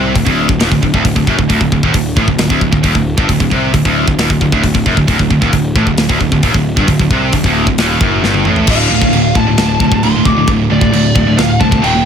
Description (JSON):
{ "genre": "heavy metal", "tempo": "134 BPM", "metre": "4/4", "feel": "straight", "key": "unclear", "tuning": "A4 = 439 Hz", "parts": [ { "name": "scooped high-gain guitar", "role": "riff", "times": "0.0-12.0 s", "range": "D2 to Eb3", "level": "-15 LUFS", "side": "right 11 dB", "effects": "distortion" }, { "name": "tight distorted guitar", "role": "riff", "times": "0.0-12.0 s", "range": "D2 to Eb3", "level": "-16 LUFS", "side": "left 12 dB", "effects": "distortion" }, { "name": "fuzz picked electric bass", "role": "bass", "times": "0.0-12.0 s", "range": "D1 to C2", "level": "-17 LUFS", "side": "equal", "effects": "overdrive" }, { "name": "tight metal drum kit", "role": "drums", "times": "0.2-11.9 s", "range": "china cymbal, crash cymbal, hi-hat, kick drum, snare drum, toms", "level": "-15 LUFS", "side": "left 1 dB", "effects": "none" }, { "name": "smooth overdriven lead guitar", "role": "melody", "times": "8.7-12.1 s", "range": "D5 to D6", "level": "-17 LUFS", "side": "left 3 dB", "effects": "none" } ], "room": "little or no reverb", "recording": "none", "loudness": "-9 LUFS", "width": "side -7 dB against mid", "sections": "0.0-8.7 A section; 8.7-12.1 B section", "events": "drum fill 8.2-8.7; lead electric guitar solo 8.7-12.1", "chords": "0.0 D; 8.7 D5", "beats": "0.16 0.60 1.05 | 1.50 1.95 2.40 2.84 | 3.29 3.74 4.19 4.64 | 5.09 5.54 5.99 6.43 | 6.88 7.33 7.78 8.23 | 8.68 9.13 9.58 10.04 | 10.48 10.94 11.39 11.84" }